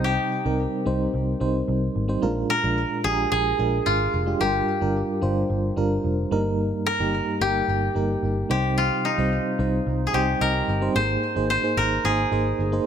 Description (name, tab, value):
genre	1980s-style pop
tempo	110 BPM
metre	4/4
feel	straight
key	unclear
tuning	A4 = 438 Hz
part	koto	melody	0.0-12.9 s	Eb4 to C5	-24 LUFS	equal	none
part	FM electric piano with tremolo	accompaniment	0.0-12.9 s	G2 to G5	-25 LUFS	right 2 dB	none
part	vintage muted picked electric bass	bass	0.0-12.8 s	F1 to C2	-26 LUFS	equal	none
room	light reverb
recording	none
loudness	-21 LUFS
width	side -8 dB against mid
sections	0.0-11.0 A section; 11.0-12.9 B section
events	FM electric piano fill 9.9-11.0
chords	0.0 Cm; 2.2 Bb7; 4.4 Gm7; 6.3 Eb/G; 8.5 Cm; 11.0 Abadd9